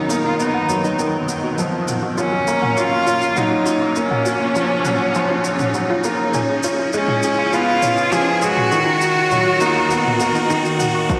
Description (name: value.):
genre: piano and strings electronica.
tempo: 101 BPM.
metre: 4/4.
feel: straight.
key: F# major.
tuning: A4 = 440 Hz.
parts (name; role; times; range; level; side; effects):
clear cello; melody; 0.0-10.5 s; C#4 to G#4; -22 LUFS; equal; analog delay.
granular cloud pad; sustained chords; 0.0-11.2 s; D#3 to A#5; -28 LUFS; equal; built-in reverb, subtle chorus.
analog pluck; arpeggios; 0.0-11.2 s; D#4 to G#5; -29 LUFS; equal; chorus, sidechain pumping, analog delay.
felt-muted upright piano; riff; 0.0-11.2 s; D#3 to C#4; -24 LUFS; equal; analog delay.
riser; sound effects; 1.2-11.1 s; none; -29 LUFS; equal; none.
electronic shaker and toms; drums; 0.1-11.2 s; none; -31 LUFS; equal; small room ambience.
electronic kick drum; drums; 11.1-11.2 s; none; -22 LUFS; equal; overdrive, small room ambience.
room: wet lush hall reverb, RT60 2.0 s.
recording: dreamy mix soaked in reverb.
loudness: -18 LUFS.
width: mono.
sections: 0.0-11.1 A section.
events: build-up 0.0-11.1; riser 1.2-11.1; filter sweep on synth arpeggio sound 0.0-11.1.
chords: 0.0 Bmaj7/D#; 1.6 F#maj7; 6.3 C#7; 8.7 Bmaj7/D#.